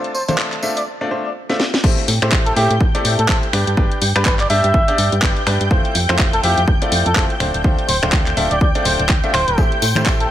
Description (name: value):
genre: piano house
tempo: 124 BPM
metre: 4/4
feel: swing 58% on 16ths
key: A minor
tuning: A4 = 442 Hz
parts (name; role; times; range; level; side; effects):
- analog string pad; sustained chords; 0.0-10.3 s; G5 to A6; -24 LUFS; right 1 dB; ensemble chorus, sidechain pumping
- bright upright piano; riff; 0.0-10.3 s; A3 to E5; -22 LUFS; left 1 dB; sidechain pumping, ping-pong delay
- garage drum kit; drums; 0.0-10.3 s; crash cymbal, finger snaps, handclaps, hi-hat, snare drum; -21 LUFS; left 1 dB; none
- trumpet with cup mute; melody; 0.1-10.3 s; G4 to E5; -22 LUFS; equal; ping-pong delay
- tambourine and congas; percussion; 0.1-0.8, 9.6-10.2 s; none; -26 LUFS; left 1 dB; none
- solid FM bass; bass; 1.8-10.3 s; D1 to A2; -20 LUFS; equal; sidechain pumping
- electronic kick drum; drums; 1.8-10.2 s; none; -17 LUFS; equal; none
room: little or no reverb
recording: none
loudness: -14 LUFS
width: side -12 dB against mid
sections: 0.0-1.8 A section; 1.8-10.3 B section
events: filter sweep on drum 0.0-1.8; drum fill 1.5-1.8; drop 1.8-10.3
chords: 0.0 Fmaj7; 1.8 Am7; 3.5 G; 5.7 Fmaj7; 7.4 Dm7; 9.6 Am7